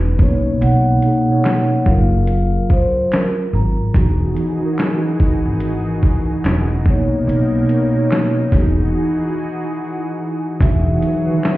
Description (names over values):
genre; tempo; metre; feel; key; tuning
lo-fi hip hop; 72 BPM; 4/4; swing 61% on 16ths; E lydian; A4 = 441 Hz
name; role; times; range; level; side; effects
vibraphone with soft mallets; melody; 0.0-4.0, 10.6-11.6 s; A#4 to A#5; -23 LUFS; equal; analog delay
mellow tine electric piano; accompaniment; 0.0-11.6 s; B2 to C#5; -18 LUFS; equal; medium stereo tremolo
upright bass; bass; 0.0-11.0 s; E1 to B1; -18 LUFS; equal; none
dusty soul sampler-style drum kit; drums; 0.2-11.6 s; handclaps, hi-hat, kick drum, shaker, snare drum; -16 LUFS; equal; none
lush unison pad; sustained chords; 3.9-11.6 s; B2 to G#4; -26 LUFS; equal; chorus
egg shaker; percussion; 10.6-11.6 s; none; -59 LUFS; left 7 dB; none
room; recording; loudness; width
light reverb; heard muffled through a wall, stone room reverb, EQ; -14 LUFS; side -17 dB against mid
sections
0.0-10.6 A section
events
break 3.9-10.6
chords
0.2 Bmaj9; 1.9 F#maj9; 3.9 Emaj9; 6.9 Bmaj9; 8.5 Emaj9